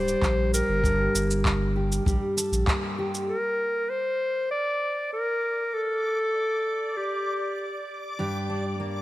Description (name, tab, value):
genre	folktronica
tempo	98 BPM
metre	4/4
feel	straight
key	G minor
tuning	A4 = 438 Hz
part	warm clarinet	melody	0.0-7.9 s	G4 to D5	-26 LUFS	equal	digital delay
part	fingerpicked steel-string acoustic guitar	arpeggios	0.0-3.9, 8.2-9.0 s	G2 to A4	-28 LUFS	equal	none
part	warm sub bass	bass	0.0-2.6 s	D1 to Bb1	-27 LUFS	equal	none
part	electronic shaker and handclaps	drums	0.1-3.3 s	none	-31 LUFS	right 1 dB	none
part	kick drum	drums	0.2-2.8 s	none	-27 LUFS	equal	none
part	backwards swelling texture	texture	4.7-9.0 s	D5 to D6	-36 LUFS	left 1 dB	built-in reverb
room	light reverb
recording	none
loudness	-24 LUFS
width	side -16 dB against mid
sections	0.0-3.3 A section; 3.3-9.0 B section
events	band accent 2.7-3.0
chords	0.0 Gmadd9; 3.3 N.C.; 8.2 Gm